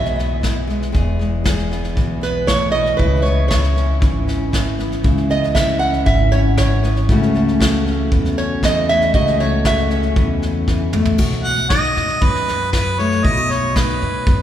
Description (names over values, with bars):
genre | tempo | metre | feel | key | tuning
acoustic folk duo or small band | 117 BPM | 4/4 | straight | unclear | A4 = 440 Hz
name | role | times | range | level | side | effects
lap resonator guitar | second line | 0.0-10.1 s | B4 to F#5 | -21 LUFS | right 3 dB | none
fingerpicked steel-string acoustic guitar | accompaniment | 0.0-14.4 s | E2 to G#4 | -21 LUFS | left 2 dB | none
upright bass | bass | 0.0-14.4 s | E1 to F#2 | -20 LUFS | equal | none
soft brush drum kit | drums | 0.1-14.4 s | crash cymbal, kick drum, snare drum, toms | -20 LUFS | equal | none
warm harmonica | melody | 11.4-14.4 s | B4 to F#5 | -18 LUFS | right 1 dB | none
room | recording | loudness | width
wet church reverb, RT60 3.7 s | recorded in a church or concert hall | -14 LUFS | side -11 dB against mid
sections
0.0-11.2 A section; 11.2-14.4 B section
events
resonator guitar played with a steel bar solo 0.0-11.2; drum fill 10.7-11.2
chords
0.0 E; 3.0 C#m7; 7.1 A6/C#; 11.2 B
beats
0.43 | 0.94 1.45 1.97 2.48 | 2.99 3.51 4.02 4.53 | 5.04 5.56 6.07 6.58 | 7.09 7.61 8.12 8.63 | 9.14 9.66 10.17 10.68 | 11.19 11.71 12.22 12.73 | 13.24 13.75 14.27